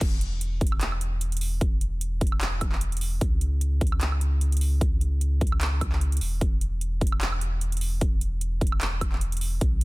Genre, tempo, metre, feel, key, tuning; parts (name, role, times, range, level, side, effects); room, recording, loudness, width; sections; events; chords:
future bass; 150 BPM; 4/4; swing 55% on 16ths, half-time; A4 = 443 Hz
saturated sub bass; bass; 0.0-9.8 s; E1 to C#2; -26 LUFS; equal; sidechain pumping
big-room dance drum kit; drums; 0.0-9.8 s; crash cymbal, handclaps, hi-hat, woodblock; -32 LUFS; right 2 dB; high-pass filter on snare, high-pass filter on hats, high-pass filter on cymbals, high-pass filter on perc
electronic kick drum; drums; 0.0-9.7 s; -25 LUFS; equal
little or no reverb; dense, heavily limited modern master; -23 LUFS; side -22 dB against mid
0.0-9.8 A section
drop 0.0-9.8